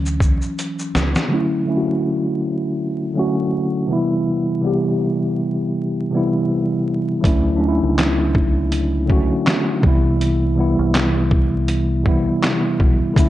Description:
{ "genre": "lo-fi hip hop", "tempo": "81 BPM", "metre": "4/4", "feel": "swing 57% on 16ths", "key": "D major", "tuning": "A4 = 440 Hz", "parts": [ { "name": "mellow tine electric piano", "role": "accompaniment", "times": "0.0-13.3 s", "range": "C3 to G4", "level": "-18 LUFS", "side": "equal", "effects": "medium stereo tremolo, cassette tape, low-pass filter" }, { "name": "deep dub fingered electric bass", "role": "bass", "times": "0.0-1.1, 7.2-13.3 s", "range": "B1 to D2", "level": "-21 LUFS", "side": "equal", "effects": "none" }, { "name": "trip hop sampler-style drum kit", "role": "drums", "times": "0.1-1.3, 7.2-13.3 s", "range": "handclaps, hi-hat, kick drum, shaker, snare drum", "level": "-18 LUFS", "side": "equal", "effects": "none" } ], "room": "light reverb", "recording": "vinyl crackle, nothing above 10.6 kHz", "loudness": "-16 LUFS", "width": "side -14 dB against mid", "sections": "0.0-1.3 A section; 1.3-13.2 B section", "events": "tine electric piano solo 0.0-1.3; drum fill 0.6-1.3; filter sweep on tine electric piano 1.3-13.2", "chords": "0.0 Dmaj9; 3.9 Cmaj7; 7.2 Dmaj9; 9.8 Cmaj7" }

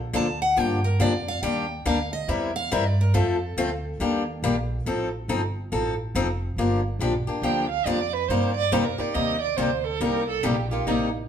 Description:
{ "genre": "acoustic string swing (jazz manouche)", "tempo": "140 BPM", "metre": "4/4", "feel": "swing 63% on 8ths", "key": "G minor from 6.6 s", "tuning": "A4 = 443 Hz", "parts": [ { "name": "upright bass", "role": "bass", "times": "0.0-11.3 s", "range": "F1 to G2", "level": "-28 LUFS", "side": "right 1 dB", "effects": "none" }, { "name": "picked steel-string acoustic guitar", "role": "accompaniment", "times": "0.1-11.1 s", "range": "C3 to Bb4", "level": "-25 LUFS", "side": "left 3 dB", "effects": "none" }, { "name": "picked steel-string acoustic guitar", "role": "melody", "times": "0.2-4.4 s", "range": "A4 to A5", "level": "-28 LUFS", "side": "equal", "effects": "none" }, { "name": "warm violin", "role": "second line", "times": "7.4-11.0 s", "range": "Eb4 to G5", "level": "-26 LUFS", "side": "right 8 dB", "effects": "none" } ], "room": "wet large studio reverb, RT60 0.9 s", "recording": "band playing live in one room", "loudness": "-22 LUFS", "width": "side -8 dB against mid", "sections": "0.0-6.6 A section; 6.6-11.3 A section", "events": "steel-string acoustic guitar solo 0.0-6.6; violin solo 6.6-11.3", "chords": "0.0 Bbmaj7; 0.6 Gm7; 1.4 Ebmaj7; 2.3 C7/E; 3.1 F; 4.0 Ebmaj7; 4.9 F7; 6.6 Gm7; 8.3 Eb69; 10.0 Cm7" }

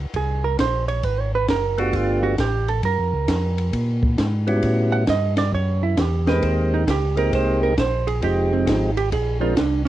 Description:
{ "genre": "soul jazz organ trio", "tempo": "134 BPM", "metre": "4/4", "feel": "swing 66% on 8ths", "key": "unclear", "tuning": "A4 = 444 Hz", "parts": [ { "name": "mellow tonewheel organ", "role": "bass", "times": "0.0-9.9 s", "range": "F1 to Bb2", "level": "-22 LUFS", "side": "equal", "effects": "chorus vibrato, slow rotary speaker" }, { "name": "compact cocktail drum kit", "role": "drums", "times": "0.1-9.7 s", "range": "hi-hat, kick drum, ride cymbal, snare drum", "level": "-26 LUFS", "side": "equal", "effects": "cassette tape" }, { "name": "hollow-body jazz guitar", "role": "accompaniment", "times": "0.2-9.9 s", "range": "C4 to F#5", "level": "-24 LUFS", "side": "right 7 dB", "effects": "cassette tape" }, { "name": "percussive tonewheel organ", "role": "melody", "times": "1.8-9.6 s", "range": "F3 to Bb4", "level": "-21 LUFS", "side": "left 1 dB", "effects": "slow rotary speaker, cassette tape" } ], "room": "light reverb", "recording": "home recording on cassette", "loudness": "-18 LUFS", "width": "side -13 dB against mid", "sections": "0.0-9.9 A section", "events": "hollow-body jazz guitar solo 0.0-9.9", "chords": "0.0 N.C.; 1.0 Abm7; 1.9 G9; 2.8 Gbmaj7; 4.6 A13; 6.4 Abmaj9; 8.2 Fm7; 9.1 Bb9" }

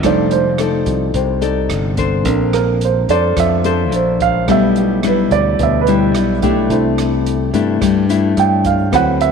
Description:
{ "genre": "bossa nova", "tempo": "108 BPM", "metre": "4/4", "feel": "straight", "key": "unclear", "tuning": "A4 = 440 Hz", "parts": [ { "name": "dark baby grand piano", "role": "accompaniment", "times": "0.0-9.3 s", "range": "F#3 to G5", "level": "-17 LUFS", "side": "right 11 dB", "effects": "none" }, { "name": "nylon-string guitar", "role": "accompaniment", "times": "0.0-9.3 s", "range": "B2 to D5", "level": "-16 LUFS", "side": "left 9 dB", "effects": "none" }, { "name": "modern bright fingered electric bass", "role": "bass", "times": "0.0-9.3 s", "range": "F1 to G2", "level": "-19 LUFS", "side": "right 1 dB", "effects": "none" }, { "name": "open jazz drum kit", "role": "drums", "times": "0.0-9.3 s", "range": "hi-hat, kick drum, rim click", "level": "-26 LUFS", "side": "right 3 dB", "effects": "none" } ], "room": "moderate echo chamber reverb, RT60 2.2 s", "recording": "1960s-style stereo with parts hard left and right", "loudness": "-12 LUFS", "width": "side -6 dB against mid", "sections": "0.0-9.3 A section", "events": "grand piano solo 0.0-9.3", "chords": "0.0 F13; 2.3 Bbmaj9; 4.5 G6/B; 6.7 C69" }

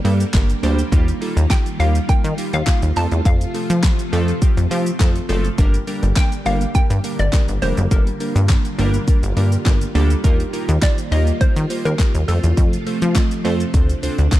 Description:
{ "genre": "dance-pop", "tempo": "103 BPM", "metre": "4/4", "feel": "straight", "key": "G minor", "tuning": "A4 = 440 Hz", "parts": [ { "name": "hollow square pluck", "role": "melody", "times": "0.0-12.8 s", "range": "A4 to A5", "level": "-26 LUFS", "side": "equal", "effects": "chorus, ping-pong delay" }, { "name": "glassy digital keys", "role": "accompaniment", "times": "0.0-14.4 s", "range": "F3 to Eb5", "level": "-25 LUFS", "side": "right 2 dB", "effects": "chorus, sidechain pumping" }, { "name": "string machine, full ensemble", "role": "sustained chords", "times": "0.0-14.4 s", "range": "C3 to G4", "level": "-28 LUFS", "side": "equal", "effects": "phaser, ensemble chorus, sidechain pumping" }, { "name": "plucky analog bass", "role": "bass", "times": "0.0-14.4 s", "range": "F1 to F3", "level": "-18 LUFS", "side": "equal", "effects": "sidechain pumping" }, { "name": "pop drum kit", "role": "drums", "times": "0.1-14.4 s", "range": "handclaps, hi-hat, kick drum, shaker, snare drum", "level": "-18 LUFS", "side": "equal", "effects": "none" }, { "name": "group handclap", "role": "percussion", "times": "0.3-14.4 s", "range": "none", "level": "-33 LUFS", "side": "left 8 dB", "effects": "none" } ], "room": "little or no reverb", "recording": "dark, warm production", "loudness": "-15 LUFS", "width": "side -14 dB against mid", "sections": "0.0-14.4 A section", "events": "none", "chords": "0.0 Gm; 0.9 Ebadd9; 3.0 F; 5.6 Gm; 10.2 Ebadd9; 12.3 F; 13.7 Dm7" }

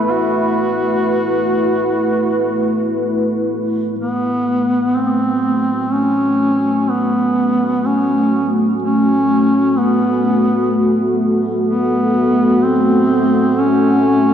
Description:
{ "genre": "dark ambient drone", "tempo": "free time", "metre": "none", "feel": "none", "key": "F# minor", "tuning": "A4 = 439 Hz", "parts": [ { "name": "mellow duduk", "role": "melody", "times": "0.0-14.3 s", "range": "A3 to F#4", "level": "-16 LUFS", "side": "equal", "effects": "tape echo" }, { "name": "dark analog pad", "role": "sustained chords", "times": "0.0-14.3 s", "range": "A3 to B4", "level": "-17 LUFS", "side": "equal", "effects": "chorus" } ], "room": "wet cathedral reverb, RT60 5.4 s", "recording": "dark, warm production", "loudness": "-13 LUFS", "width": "side -9 dB against mid", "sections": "0.0-4.0 A section; 4.0-14.3 B section", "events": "none", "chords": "0.0 F#m" }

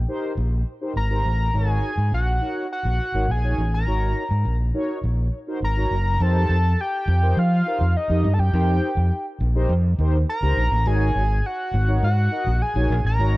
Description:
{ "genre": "early-eighties boogie funk", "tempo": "103 BPM", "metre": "4/4", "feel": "straight", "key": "unclear", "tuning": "A4 = 440 Hz", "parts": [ { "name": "overdriven fingered electric bass", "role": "bass", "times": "0.0-13.4 s", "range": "Gb1 to F3", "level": "-20 LUFS", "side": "equal", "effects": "none" }, { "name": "mellow synth brass", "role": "accompaniment", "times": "0.1-13.4 s", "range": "Eb4 to Eb5", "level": "-29 LUFS", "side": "left 1 dB", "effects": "chorus" }, { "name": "fat analog lead", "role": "melody", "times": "1.0-13.4 s", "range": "Eb5 to Bb5", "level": "-26 LUFS", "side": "equal", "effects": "chorus" } ], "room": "light reverb", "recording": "dark, warm production", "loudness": "-19 LUFS", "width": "side -19 dB against mid", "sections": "0.0-6.2 A section; 6.2-13.4 B section", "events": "none", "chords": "0.0 F9sus4 (rootless); 1.5 Ab9sus4; 6.2 F9sus4; 10.9 Ab9sus4" }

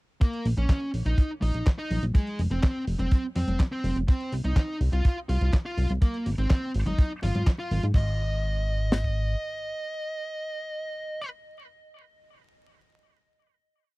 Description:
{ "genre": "italo disco", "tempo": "124 BPM", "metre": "4/4", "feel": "straight", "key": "Ab major", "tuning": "A4 = 438 Hz", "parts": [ { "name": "fuzz lead guitar", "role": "melody", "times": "0.2-11.3 s", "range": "Ab3 to F5", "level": "-32 LUFS", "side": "right 1 dB", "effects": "distortion, tape echo" }, { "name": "dusty soul sampler-style drum kit", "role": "drums", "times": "0.2-8.1 s", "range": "congas, crash cymbal, handclaps, hi-hat, snare drum", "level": "-34 LUFS", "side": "left 1 dB", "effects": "none" }, { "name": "tight funk drum kit", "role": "drums", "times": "0.2-9.2 s", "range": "kick drum, snare drum", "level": "-21 LUFS", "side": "equal", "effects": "none" }, { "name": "chorused synth bass", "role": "bass", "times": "0.5-9.4 s", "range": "F1 to Ab2", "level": "-25 LUFS", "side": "equal", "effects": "none" } ], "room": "little or no reverb", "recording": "dry, close 1970s-style studio recording, vinyl crackle", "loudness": "-24 LUFS", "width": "side -22 dB against mid", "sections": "0.2-8.0 chorus; 8.0-11.8 final chord", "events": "band accent 7.5", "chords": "0.2 Bbm; 2.1 Fm; 4.1 Cm; 6.0 Abadd9" }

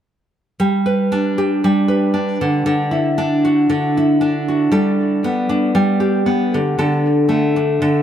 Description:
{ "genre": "pop", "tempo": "116 BPM", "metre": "4/4", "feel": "straight", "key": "G major", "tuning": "A4 = 440 Hz", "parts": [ { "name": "nylon-string guitar", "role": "solo", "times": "0.6-8.0 s", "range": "D3 to B4", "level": "-14 LUFS", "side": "equal", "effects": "tape echo" } ], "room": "moderate spring reverb, RT60 2.6 s", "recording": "echo-heavy mix", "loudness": "-14 LUFS", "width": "side -9 dB against mid", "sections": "0.6-4.7 A section; 4.7-8.0 B section", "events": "none", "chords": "0.6 G; 2.4 Dadd9; 4.7 Gadd9; 6.5 D5" }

